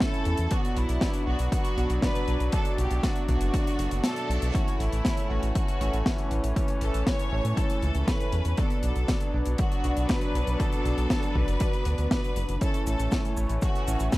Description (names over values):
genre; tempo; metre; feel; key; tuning
italo disco; 119 BPM; 4/4; straight; B minor; A4 = 440 Hz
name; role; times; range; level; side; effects
bright studio violin section; melody; 0.0-14.2 s; E4 to C#5; -34 LUFS; equal; tape echo
warm chamber string section; sustained chords; 0.0-14.2 s; E3 to E4; -34 LUFS; left 2 dB; none
chorused polysynth; stabs; 0.0-14.2 s; A2 to D5; -35 LUFS; right 2 dB; none
crisp fusion drum kit; drums; 0.0-14.2 s; cabasa, hi-hat, snare drum; -32 LUFS; left 1 dB; none
electronic kick drum; drums; 0.0-14.2 s; none; -28 LUFS; equal; overdrive
round analog bass; bass; 0.3-14.1 s; F#1 to A2; -26 LUFS; equal; none
reverse cymbal; sound effects; 3.9-4.5 s; none; -43 LUFS; right 6 dB; none
room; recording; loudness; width
small room ambience; dry, gritty hardware recording; -24 LUFS; side -18 dB against mid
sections
0.0-14.2 A section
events
reverse cymbal 3.9-4.5; kick drops out 4.0-4.5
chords
0.0 A; 0.5 Bm; 4.5 A; 8.6 Bm; 12.6 A